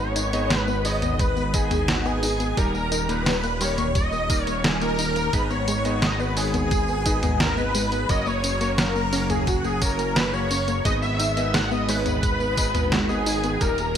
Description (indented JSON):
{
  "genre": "synthwave",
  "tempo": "87 BPM",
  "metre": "4/4",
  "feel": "straight",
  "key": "G# minor",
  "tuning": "A4 = 441 Hz",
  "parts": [
    { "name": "wide unison lead", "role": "melody", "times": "0.0-14.0 s", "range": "F#4 to F#5", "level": "-26 LUFS", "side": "equal", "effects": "ensemble chorus, digital delay" },
    { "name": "string machine, violins", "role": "second line", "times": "0.0-14.0 s", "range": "F#5 to F#6", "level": "-34 LUFS", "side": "equal", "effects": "ensemble chorus, digital delay" },
    { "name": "brassy analog pad", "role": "sustained chords", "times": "0.0-14.0 s", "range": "A#2 to B3", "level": "-32 LUFS", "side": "left 1 dB", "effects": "chorus, sidechain pumping" },
    { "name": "soft round pluck", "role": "arpeggios", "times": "0.0-13.9 s", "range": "F#3 to D#4", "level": "-31 LUFS", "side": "left 2 dB", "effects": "chorus, vintage 12-bit sampler grit, digital delay" },
    { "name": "fat analog bass", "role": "bass", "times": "0.0-14.0 s", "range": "D#1 to G#1", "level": "-28 LUFS", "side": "equal", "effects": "none" },
    { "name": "detuned 8-bit digital drum machine", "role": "drums", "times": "0.2-14.0 s", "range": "hi-hat, snare drum, tambourine, toms", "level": "-26 LUFS", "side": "equal", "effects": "none" },
    { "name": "warm electric grand piano", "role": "stabs", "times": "0.3-13.8 s", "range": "G3 to D#5", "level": "-33 LUFS", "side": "right 2 dB", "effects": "vintage 12-bit sampler grit" },
    { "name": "electronic kick drum", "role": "drums", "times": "1.2-13.7 s", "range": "none", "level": "-25 LUFS", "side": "equal", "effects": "none" }
  ],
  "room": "light reverb",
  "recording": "bright 1980s-style digital production",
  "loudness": "-20 LUFS",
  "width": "side -9 dB against mid",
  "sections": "0.0-14.0 A section",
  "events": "none",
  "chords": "0.0 G#m; 2.6 D#; 5.3 G#m; 8.1 F#; 10.9 G#m",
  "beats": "0.51 1.20 1.89 | 2.58 3.27 3.96 4.64 | 5.33 6.02 6.71 7.40 | 8.09 8.78 9.47 10.16 | 10.85 11.54 12.23 12.92 | 13.61"
}